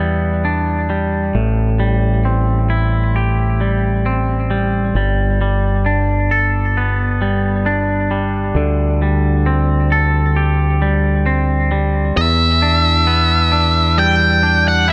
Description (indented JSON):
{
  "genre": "post-rock",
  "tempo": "66 BPM",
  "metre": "4/4",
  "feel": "straight",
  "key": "E minor",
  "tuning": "A4 = 440 Hz",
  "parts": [
    { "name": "twangy electric guitar", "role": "arpeggios", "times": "0.0-14.9 s", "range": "E2 to A4", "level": "-21 LUFS", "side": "equal", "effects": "digital delay" },
    { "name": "growling fingered electric bass", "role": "bass", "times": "0.0-14.9 s", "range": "G1 to E2", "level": "-18 LUFS", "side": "equal", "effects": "overdrive" },
    { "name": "octave-fuzz lead guitar", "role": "melody", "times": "12.2-14.9 s", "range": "E5 to G5", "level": "-16 LUFS", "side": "equal", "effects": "distortion, digital delay" }
  ],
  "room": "light reverb",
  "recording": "none",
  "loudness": "-16 LUFS",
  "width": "mono",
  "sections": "0.0-12.2 A section; 12.2-14.9 B section",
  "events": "none",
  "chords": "0.0 Em7; 1.3 Am7; 5.0 Gadd9; 8.6 D7sus4; 12.2 Em7"
}